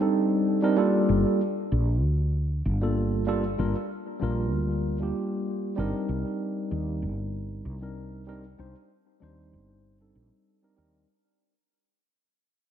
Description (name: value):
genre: sunset chillout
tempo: 96 BPM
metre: 4/4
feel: swing 55% on 16ths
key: G minor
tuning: A4 = 440 Hz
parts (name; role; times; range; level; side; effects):
- bright tine electric piano; accompaniment; 0.0-11.1 s; G3 to C5; -26 LUFS; right 1 dB; auto-pan, analog delay
- woody fretless electric bass; bass; 1.1-11.0 s; G1 to Eb2; -27 LUFS; equal; analog chorus
room: wet echo chamber reverb, RT60 1.9 s, small room ambience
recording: echo-heavy mix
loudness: -24 LUFS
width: side -9 dB against mid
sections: 0.0-1.1 A section; 1.1-11.1 B section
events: break 0.0-1.1; fade-out 1.1-11.1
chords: 0.0 Gm9; 6.1 Cm9